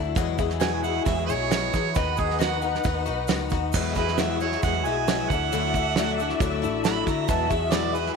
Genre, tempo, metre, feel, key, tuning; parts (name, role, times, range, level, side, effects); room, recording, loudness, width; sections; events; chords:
folk rock and heartland rock; 135 BPM; 4/4; straight; E mixolydian; A4 = 440 Hz
picked twelve-string acoustic guitar; accompaniment; 0.0-8.2 s; E2 to F#4; -27 LUFS; left 14 dB
dark chamber string section; sustained chords; 0.0-8.2 s; D4 to F#5; -32 LUFS; left 1 dB
hollow-body short-scale picked electric bass; bass; 0.0-8.1 s; A1 to E3; -30 LUFS; right 1 dB
soft brush drum kit; drums; 0.1-8.1 s; crash cymbal, hi-hat, kick drum, snare drum; -28 LUFS; right 4 dB
tube shaker; percussion; 0.2-8.1 s; -44 LUFS; right 16 dB
warm harmonica; second line; 0.6-8.2 s; F#4 to B5; -28 LUFS; right 13 dB
light reverb, small room ambience; 1960s-style stereo with parts hard left and right; -22 LUFS; side -5 dB against mid
0.0-8.2 A section
harmonica solo 0.0-8.2
0.2 Eadd9; 2.0 B/D#; 3.7 Eadd9; 5.3 Dadd9; 7.3 Eadd9